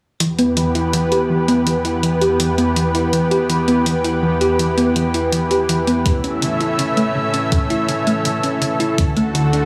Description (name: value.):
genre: synthwave.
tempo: 82 BPM.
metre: 4/4.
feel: straight.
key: E dorian.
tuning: A4 = 439 Hz.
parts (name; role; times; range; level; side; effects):
lush unison pad; sustained chords; 0.3-9.7 s; D2 to E5; -21 LUFS; equal; chorus, sidechain pumping.
thumb-piano-like synth pluck; arpeggios; 0.2-9.7 s; C#3 to G4; -21 LUFS; equal; chorus, digital delay.
electronic hi-hat; drums; 0.2-9.7 s; none; -26 LUFS; equal; none.
electronic kick drum; drums; 6.1-9.1 s; none; -20 LUFS; equal; none.
room: wet concert hall reverb, RT60 1.9 s, digital ambience.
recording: small room ambience.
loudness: -17 LUFS.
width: mono.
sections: 0.2-9.7 A section.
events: filter sweep on synth arpeggio sound 0.2-9.7.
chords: 0.2 Em; 6.1 A; 9.0 D.